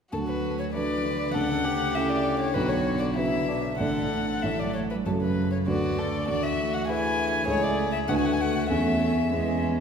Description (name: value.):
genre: quick classical-period movement for piano quartet.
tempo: 98 BPM.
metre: 2/4.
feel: straight.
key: D major, A major from 5.0 s.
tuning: A4 = 441 Hz.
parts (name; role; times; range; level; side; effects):
warm violin; melody; 0.1-9.6 s; A4 to G#5; -29 LUFS; left 3 dB; none.
rich cello; second line; 0.1-9.7 s; B2 to A3; -33 LUFS; right 3 dB; none.
rich violin; second line; 0.1-9.8 s; B3 to B4; -32 LUFS; left 1 dB; none.
warm concert grand piano; accompaniment; 0.1-9.8 s; A1 to D5; -26 LUFS; equal; none.
room: wet concert hall reverb, RT60 2.3 s.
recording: heard from further back in the room.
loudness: -23 LUFS.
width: side -6 dB against mid.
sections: 0.1-9.8 A section.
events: none.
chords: 0.1 D; 1.3 A/D; 2.6 Bm; 3.8 D/A; 4.4 A; 5.0 F#m; 5.7 Bm7/D; 6.3 E7/D; 7.5 A/C#; 8.1 Bm7/D; 8.7 A/E.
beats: | 0.12 0.74 | 1.35 1.95 | 2.55 3.16 | 3.79 4.42 | 5.05 5.67 | 6.28 6.88 | 7.48 8.08 | 8.70 9.33.